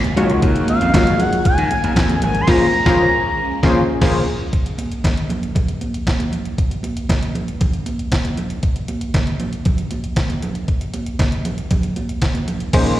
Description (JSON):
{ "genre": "early-eighties boogie funk", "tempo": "117 BPM", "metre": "4/4", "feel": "straight", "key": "Bb minor", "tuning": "A4 = 440 Hz", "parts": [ { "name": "phased string machine", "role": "sustained chords", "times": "0.0-4.5, 12.7-13.0 s", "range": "Eb3 to F5", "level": "-27 LUFS", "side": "equal", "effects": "ensemble chorus, phaser" }, { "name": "detuned 8-bit digital drum machine", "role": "drums", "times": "0.0-13.0 s", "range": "crash cymbal, handclaps, hi-hat, kick drum, snare drum", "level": "-18 LUFS", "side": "equal", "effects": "none" }, { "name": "congas", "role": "percussion", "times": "0.0-12.9 s", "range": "none", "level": "-25 LUFS", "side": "right 2 dB", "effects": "slapback echo" }, { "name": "funky polysynth comp", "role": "accompaniment", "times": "0.2-4.2, 12.7-13.0 s", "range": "Ab3 to Db5", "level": "-18 LUFS", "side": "left 2 dB", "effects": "chorus, slapback echo" }, { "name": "gritty slap bass", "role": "bass", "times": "0.2-4.2, 12.7-13.0 s", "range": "Ab1 to Eb3", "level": "-20 LUFS", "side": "equal", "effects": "overdrive" }, { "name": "expressive portamento lead", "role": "melody", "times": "0.7-4.0 s", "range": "F5 to C6", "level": "-19 LUFS", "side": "equal", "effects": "chorus, slapback echo" } ], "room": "light reverb", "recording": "live gig heard through the venue's PA, recital hall reverb", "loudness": "-16 LUFS", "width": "side -13 dB against mid", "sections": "0.0-4.5 A section; 4.5-12.7 B section", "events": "band accent 2.5-4.5", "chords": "0.2 Ebm11; 2.5 Bbm9; 4.5 N.C." }